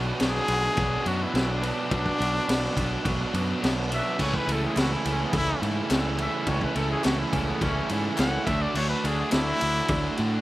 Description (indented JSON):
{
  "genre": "indie rock",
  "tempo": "105 BPM",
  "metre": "4/4",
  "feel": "straight",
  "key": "unclear",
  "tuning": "A4 = 441 Hz",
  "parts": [
    { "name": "tonewheel organ", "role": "sustained chords", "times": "0.0-10.4 s", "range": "F#4 to D6", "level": "-42 LUFS", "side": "left 1 dB", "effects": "none" },
    { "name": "biting overdriven guitar", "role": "riff", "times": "0.0-10.4 s", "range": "B2 to E4", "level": "-33 LUFS", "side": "left 5 dB", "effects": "slapback echo" },
    { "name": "fuzz guitar", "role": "riff", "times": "0.0-10.4 s", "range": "B2 to F#4", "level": "-29 LUFS", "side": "right 4 dB", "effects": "distortion" },
    { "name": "growling fingered electric bass", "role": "bass", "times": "0.0-10.4 s", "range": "B1 to A2", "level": "-29 LUFS", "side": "equal", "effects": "overdrive" },
    { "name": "warm trumpet", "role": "melody", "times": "0.2-10.4 s", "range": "B3 to F#5", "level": "-29 LUFS", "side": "left 1 dB", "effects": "none" },
    { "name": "raw garage drum kit", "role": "drums", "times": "0.2-10.3 s", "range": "crash cymbal, kick drum, ride cymbal, snare drum", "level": "-30 LUFS", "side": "equal", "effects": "none" },
    { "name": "group handclap", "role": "percussion", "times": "4.8-9.5 s", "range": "none", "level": "-38 LUFS", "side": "left 4 dB", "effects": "none" }
  ],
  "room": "little or no reverb",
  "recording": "recorded outdoors, with no room sound",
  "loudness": "-23 LUFS",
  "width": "side -16 dB against mid",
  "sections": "0.0-10.4 A section",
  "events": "trumpet solo 0.0-10.4",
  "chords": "0.0 Bm; 4.2 A/C#; 8.5 Dadd9",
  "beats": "0.21 0.78 1.35 | 1.92 2.49 3.06 3.62 | 4.19 4.76 5.33 5.90 | 6.47 7.04 7.61 8.18 | 8.75 9.32 9.89"
}